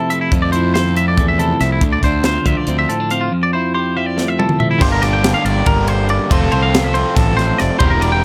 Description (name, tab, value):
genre	math rock and midwest emo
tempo	281 BPM (eighths)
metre	7/8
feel	straight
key	F major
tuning	A4 = 441 Hz
part	twelve-string electric guitar	accompaniment	0.0-4.8 s	F2 to A4	-21 LUFS	equal	none
part	twangy electric guitar	arpeggios	0.0-8.2 s	E4 to G5	-21 LUFS	equal	none
part	crisp fusion drum kit	drums	0.1-8.1 s	crash cymbal, hi-hat, kick drum, ride cymbal, snare drum, toms	-21 LUFS	equal	none
part	fuzz fingered electric bass	bass	0.3-8.2 s	E1 to F2	-20 LUFS	equal	overdrive
part	overdriven electric guitar	riff	4.8-8.2 s	G2 to Bb4	-21 LUFS	equal	none
room	little or no reverb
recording	none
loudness	-15 LUFS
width	mono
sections	0.0-4.8 A section; 4.8-8.2 B section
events	drum fill 4.2-4.8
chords	0.0 Fmaj7; 1.8 Dm7; 3.3 Fmaj9; 4.8 Gm; 6.3 F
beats	0.11 | 0.33 0.54 0.75 0.97 1.18 1.40 1.61 | 1.82 2.04 2.25 2.46 2.68 2.89 3.11 | 3.32 3.53 3.75 3.96 4.17 4.39 4.60 | 4.82 5.03 5.24 5.46 5.67 5.88 6.10 | 6.31 6.52 6.74 6.95 7.16 7.38 7.59 | 7.80 8.02 8.23